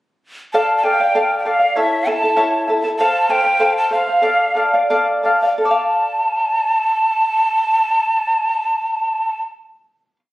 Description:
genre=andean folk, Andean ensemble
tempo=79-99 BPM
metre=2/4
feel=straight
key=D minor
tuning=A4 = 440 Hz
part: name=breathy mellow quena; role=melody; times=0.5-9.4 s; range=E5 to A5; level=-16 LUFS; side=equal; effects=none
part: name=charango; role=accompaniment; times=0.5-10.2 s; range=E4 to A5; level=-16 LUFS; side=equal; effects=none
room=light reverb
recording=recorded on a phone in the room, studio reverb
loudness=-14 LUFS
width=side -17 dB against mid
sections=0.5-5.6 A section; 5.6-8.7 final chord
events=slowing down 3.0-5.6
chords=0.5 Dm; 1.8 A; 3.0 F; 4.2 Dm

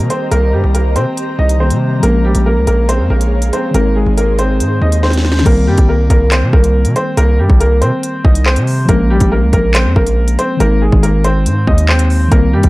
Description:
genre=hip hop, drill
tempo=140 BPM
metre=4/4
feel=half-time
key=C phrygian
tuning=A4 = 440 Hz
part: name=bright upright piano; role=melody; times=0.0-12.7 s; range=G3 to Eb5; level=-16 LUFS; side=equal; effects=low-pass filter
part: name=mellow tine electric piano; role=accompaniment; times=0.0-12.7 s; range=Eb3 to Eb4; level=-19 LUFS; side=left 2 dB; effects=medium stereo tremolo, low-pass filter
part: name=ethereal airy pad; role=sustained chords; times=0.0-5.4 s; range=G4 to C6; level=-25 LUFS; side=right 1 dB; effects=ensemble chorus, built-in reverb, tremolo
part: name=distorted 808-style bass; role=bass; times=0.0-12.7 s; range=Ab1 to C3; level=-12 LUFS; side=equal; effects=distortion
part: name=drill drum kit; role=drums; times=0.1-12.7 s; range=crash cymbal, handclaps, hi-hat, kick drum, snare drum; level=-14 LUFS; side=equal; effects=none
room=little or no reverb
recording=dark, warm production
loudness=-10 LUFS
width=side -20 dB against mid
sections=0.0-5.5 A section; 5.5-12.7 B section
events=drum fill 5.0-5.5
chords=0.0 Cm7; 2.0 Bbm7; 3.7 Ab; 5.5 Cm7; 8.9 Bbm7; 10.6 Ab

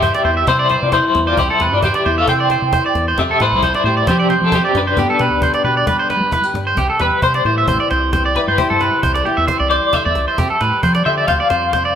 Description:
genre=highlife guitar band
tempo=133 BPM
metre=4/4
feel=straight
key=C major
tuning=A4 = 438 Hz
part: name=electric guitar at the edge of break-up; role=melody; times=0.0-11.9 s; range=C4 to G5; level=-18 LUFS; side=left 3 dB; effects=tremolo
part: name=nylon-string guitar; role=accompaniment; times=0.0-12.0 s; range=F2 to G4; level=-25 LUFS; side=left 5 dB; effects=none
part: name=electric guitar at the edge of break-up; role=arpeggios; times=0.0-12.0 s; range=G4 to E5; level=-17 LUFS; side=right 3 dB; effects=spring reverb
part: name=fingered electric bass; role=bass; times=0.0-12.0 s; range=A1 to G3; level=-21 LUFS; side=equal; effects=none
part: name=cajon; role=drums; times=0.0-11.8 s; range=none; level=-24 LUFS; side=equal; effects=none
room=moderate large studio reverb, RT60 1.1 s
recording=band playing live in one room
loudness=-13 LUFS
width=side -8 dB against mid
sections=0.0-6.8 A section; 6.8-12.0 B section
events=clean electric guitar solo 6.8-12.0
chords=0.0 C; 3.2 Fadd9; 5.0 G; 6.8 C; 10.4 Fadd9

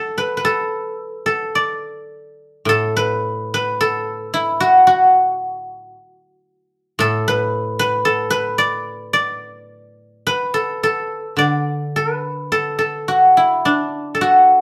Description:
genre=chinese traditional, Chinese solo plucked strings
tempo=52-57 BPM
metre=2/4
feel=rubato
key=unclear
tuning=A4 = 440 Hz
part: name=guzheng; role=solo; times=0.0-14.6 s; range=A2 to D5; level=-18 LUFS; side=equal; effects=none
room=moderate studio reverb, RT60 0.8 s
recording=band playing live in one room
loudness=-18 LUFS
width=mono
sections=0.0-2.7 A section; 2.7-11.4 B section; 11.4-14.6 A section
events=none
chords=none

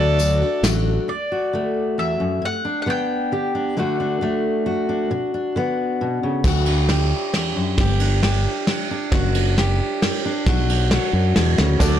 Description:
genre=indie folk with a building arrangement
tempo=134 BPM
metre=3/4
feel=straight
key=D major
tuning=A4 = 440 Hz
part: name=mandolin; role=melody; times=0.0-3.5 s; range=D5 to G5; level=-24 LUFS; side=left 1 dB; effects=none
part: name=warm fiddle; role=second line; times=0.0-0.6 s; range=A4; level=-29 LUFS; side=right 5 dB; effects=none
part: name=picked plugged-in steel-string acoustic guitar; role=accompaniment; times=0.0-1.1, 11.8-12.0 s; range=D3 to F#4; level=-25 LUFS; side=left 4 dB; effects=none
part: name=fingered electric bass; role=bass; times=0.0-1.0, 6.4-12.0 s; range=F#1 to F#2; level=-19 LUFS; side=right 1 dB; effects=none
part: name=soft brush drum kit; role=drums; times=0.2-0.7, 6.4-11.9 s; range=crash cymbal, hi-hat, kick drum, ride cymbal, snare drum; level=-21 LUFS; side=equal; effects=soft clipping on snare
part: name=tambourine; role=percussion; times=0.2-0.7, 11.8-11.9 s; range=none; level=-31 LUFS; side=left 12 dB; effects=none
part: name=fingerpicked steel-string acoustic guitar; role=accompaniment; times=1.1-11.8 s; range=D2 to G4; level=-22 LUFS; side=left 1 dB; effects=none
part: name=clear concert grand piano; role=accompaniment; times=11.8-12.0 s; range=D2 to D5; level=-23 LUFS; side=right 8 dB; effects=none
part: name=mellow tonewheel organ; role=sustained chords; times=11.8-12.0 s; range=A4 to D6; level=-27 LUFS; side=left 1 dB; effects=slow rotary speaker
room=light reverb, small room ambience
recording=blown-out, overdriven recording, overdrive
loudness=-18 LUFS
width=side -10 dB against mid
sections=0.0-1.1 A section; 1.1-6.5 B section; 6.5-12.0 C section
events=build-up 6.5-12.0; drum fill 6.5-12.0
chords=0.0 D; 2.4 G; 3.8 D/F#; 5.1 Bm; 6.5 D; 7.8 G5; 9.1 D/F#; 10.5 Bm

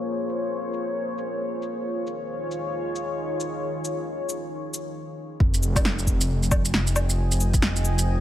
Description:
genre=future garage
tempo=135 BPM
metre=4/4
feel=swing 61% on 16ths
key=F minor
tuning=A4 = 440 Hz
part: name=deep dark ambient pad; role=sustained chords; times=0.0-8.2 s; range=Eb3 to Ab5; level=-29 LUFS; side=left 1 dB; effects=chorus, built-in reverb, vintage 12-bit sampler grit, sidechain pumping
part: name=electronic cabasa, shaker, woodblock and snare drum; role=drums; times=0.3-8.1 s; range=none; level=-26 LUFS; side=equal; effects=overdrive
part: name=swelling detuned saw bass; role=bass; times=5.4-8.2 s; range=F1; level=-23 LUFS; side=equal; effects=sidechain pumping
part: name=electronic kick drum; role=drums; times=5.4-7.6 s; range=none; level=-23 LUFS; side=equal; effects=overdrive
room=light reverb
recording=low-pass filter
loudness=-23 LUFS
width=side -12 dB against mid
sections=0.0-5.4 A section; 5.4-8.2 B section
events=filter sweep 0.0-5.4; stop 5.0-5.4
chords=0.0 Bbm9; 1.8 Eb7sus4; 5.4 Fm7

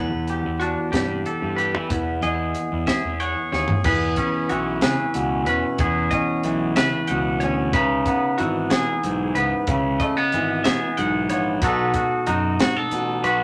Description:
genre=math rock and midwest emo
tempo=62 BPM (dotted quarters)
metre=6/8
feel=straight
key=E major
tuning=A4 = 435 Hz
part: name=twangy electric guitar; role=accompaniment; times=0.0-13.4 s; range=E2 to C#5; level=-25 LUFS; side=equal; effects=none
part: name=semi-hollow electric guitar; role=arpeggios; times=0.0-13.4 s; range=F#4 to F#5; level=-29 LUFS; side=equal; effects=none
part: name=fuzz fingered electric bass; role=bass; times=0.0-13.4 s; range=G#1 to E3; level=-30 LUFS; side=equal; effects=overdrive
part: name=crisp fusion drum kit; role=drums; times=0.3-13.4 s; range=crash cymbal, hi-hat, kick drum, snare drum, toms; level=-27 LUFS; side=equal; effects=none
room=wet studio reverb, RT60 0.5 s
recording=none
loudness=-22 LUFS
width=mono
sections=0.0-3.9 A section; 3.9-13.4 B section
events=drum fill 3.5-3.9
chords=0.0 Em11; 1.9 Emaj7; 3.9 E69; 7.7 C#m9; 11.6 B7

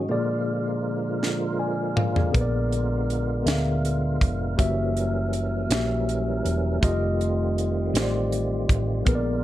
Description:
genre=slow gospel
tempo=54 BPM (dotted quarters)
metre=6/8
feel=straight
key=unclear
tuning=A4 = 440 Hz
part: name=mellow tine electric piano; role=accompaniment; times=0.0-9.4 s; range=Bb2 to Ab5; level=-26 LUFS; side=left 2 dB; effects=medium stereo tremolo
part: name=percussive tonewheel organ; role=sustained chords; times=0.0-9.4 s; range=D3 to Bb4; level=-30 LUFS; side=right 4 dB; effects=slow rotary speaker, overdrive, chorus vibrato
part: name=tight funk drum kit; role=drums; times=1.2-9.2 s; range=hi-hat, kick drum, snare drum, toms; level=-24 LUFS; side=equal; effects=none
part: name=hollow-body short-scale fingered electric bass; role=bass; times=2.3-9.4 s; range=Fb1 to D2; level=-26 LUFS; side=equal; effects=none
room=light reverb, small room reverb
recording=dark, warm production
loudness=-22 LUFS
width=side -14 dB against mid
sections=0.0-9.4 A section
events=drum fill 1.2-2.3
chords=0.1 Bb7; 2.3 Bb7b9; 4.6 Gb7b9; 6.8 F9

